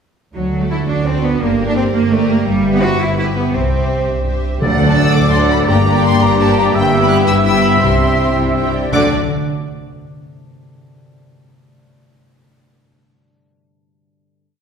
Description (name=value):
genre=cinematic, heroic adventure film score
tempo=112 BPM (dotted quarters)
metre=6/8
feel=straight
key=D mixolydian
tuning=A4 = 440 Hz
part: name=concert harp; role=arpeggios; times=0.4-9.1 s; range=G2 to D5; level=-22 LUFS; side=left 5 dB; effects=none
part: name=clear symphonic cello section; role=bass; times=0.4-9.1 s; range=D2 to F#4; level=-18 LUFS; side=right 2 dB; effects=none
part: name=warm symphonic double bass section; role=bass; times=0.4-9.1 s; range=G1 to D2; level=-20 LUFS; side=right 2 dB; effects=none
part: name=warm symphonic violin section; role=melody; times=0.5-9.1 s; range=D5 to F#6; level=-24 LUFS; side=left 3 dB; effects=none
part: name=rich symphonic violin section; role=second line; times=0.5-9.1 s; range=F#4 to G5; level=-25 LUFS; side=left 2 dB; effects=none
part: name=rich studio viola section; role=accompaniment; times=0.5-9.1 s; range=A3 to G4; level=-22 LUFS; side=equal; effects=none
part: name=bright oboe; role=second line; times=4.6-9.1 s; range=D5 to F#5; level=-24 LUFS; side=right 2 dB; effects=none
part: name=large flute ensemble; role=second line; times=4.6-9.1 s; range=Bb5 to A6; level=-25 LUFS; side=equal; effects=none
part: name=mellow clarinet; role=second line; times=4.6-9.1 s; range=E4 to D5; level=-24 LUFS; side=left 1 dB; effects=none
part: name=clear trombone section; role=sustained chords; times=4.6-9.1 s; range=G2 to G3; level=-24 LUFS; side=right 1 dB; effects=none
part: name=warm French horn section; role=sustained chords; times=4.6-9.1 s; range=A3 to B4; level=-23 LUFS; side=left 1 dB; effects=none
part: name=clear trumpet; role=stabs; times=4.6-9.1 s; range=D5 to E5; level=-20 LUFS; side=equal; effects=none
part: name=timpani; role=percussion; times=4.6-5.1, 8.9-9.1 s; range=D3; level=-23 LUFS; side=right 2 dB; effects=none
room=wet scoring stage reverb, RT60 1.6 s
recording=heard from further back in the room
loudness=-12 LUFS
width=side -6 dB against mid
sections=0.4-4.6 theme; 4.6-8.9 theme; 8.9-10.1 final chord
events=slowing down 6.2-8.9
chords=0.4 D; 1.4 Gm; 2.5 Em/G; 3.5 C; 4.6 D; 5.7 Gm; 6.7 Em/G; 7.8 C; 8.9 D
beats=| 0.35 0.89 | 1.41 1.94 | 2.47 3.00 | 3.54 4.08 | 4.62 5.16 | 5.69 6.22 | 6.75 7.28 | 7.82 8.37 | 8.94